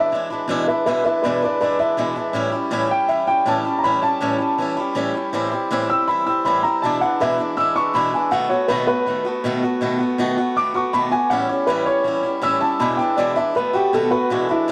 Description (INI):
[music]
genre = rock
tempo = 161 BPM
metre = 4/4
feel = straight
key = unclear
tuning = A4 = 442 Hz
[part]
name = dark upright piano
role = melody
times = 0.0-14.7 s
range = E4 to E6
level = -22 LUFS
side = equal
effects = none
[part]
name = picked swing-style acoustic guitar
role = accompaniment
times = 0.0-14.7 s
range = E2 to F#4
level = -24 LUFS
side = equal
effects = none
[sound]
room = moderate plate reverb, RT60 3.8 s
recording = none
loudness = -20 LUFS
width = mono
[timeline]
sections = 0.0-14.3 A section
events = upright piano solo 0.0-14.3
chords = 0.0 E7; 2.4 A7; 5.3 Am7; 6.8 E7; 8.3 B7; 11.3 A7; 12.8 E7; 13.6 B7